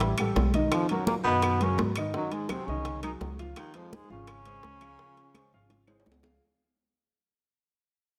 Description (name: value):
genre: Afro-Cuban jazz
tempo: 169 BPM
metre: 4/4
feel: straight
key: Db major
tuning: A4 = 439 Hz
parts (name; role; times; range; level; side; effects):
- trombone with metal mute; melody; 0.0-6.0 s; Eb3 to Eb4; -34 LUFS; equal; none
- warm baritone saxophone; second line; 0.0-6.0 s; Eb2 to Eb3; -40 LUFS; equal; none
- warm baby grand piano; accompaniment; 0.0-6.4 s; Eb3 to F5; -35 LUFS; equal; none
- upright bass; bass; 0.0-6.4 s; Ab1 to Ab2; -33 LUFS; equal; none
- bongos; percussion; 0.0-6.3 s; none; -40 LUFS; equal; none
- congas; percussion; 0.0-6.2 s; none; -36 LUFS; equal; none
- timbales; percussion; 0.0-6.3 s; none; -42 LUFS; equal; none
- claves; percussion; 0.2-6.1 s; none; -44 LUFS; equal; none
room: moderate concert hall reverb, RT60 1.8 s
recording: none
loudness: -28 LUFS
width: mono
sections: 0.0-6.4 A section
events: fade-out 0.0-6.4; drum fill 5.3-6.4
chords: 0.0 Asus2; 0.7 Cbmaj7; 2.1 Ab7; 3.6 Dbmaj7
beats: 0.02 0.37 | 0.73 1.08 1.44 1.79 | 2.15 2.50 2.86 3.21 | 3.57 3.92 4.28 4.63 | 4.99 5.34 5.70 6.05